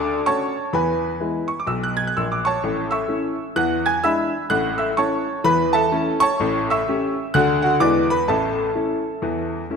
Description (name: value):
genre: jazz, stride piano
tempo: 127 BPM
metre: 4/4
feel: swing 62% on 8ths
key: A major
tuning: A4 = 440 Hz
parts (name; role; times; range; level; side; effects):
- bright grand piano; solo; 0.0-9.8 s; A1 to G#6; -18 LUFS; equal; none
room: wet concert hall reverb, RT60 1.9 s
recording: none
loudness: -18 LUFS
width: side -6 dB against mid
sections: 0.0-9.8 A section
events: none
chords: 0.0 Dmaj7; 0.7 E; 2.6 A; 3.6 E7; 4.5 A; 6.4 A7; 7.3 D; 7.8 E7; 8.3 A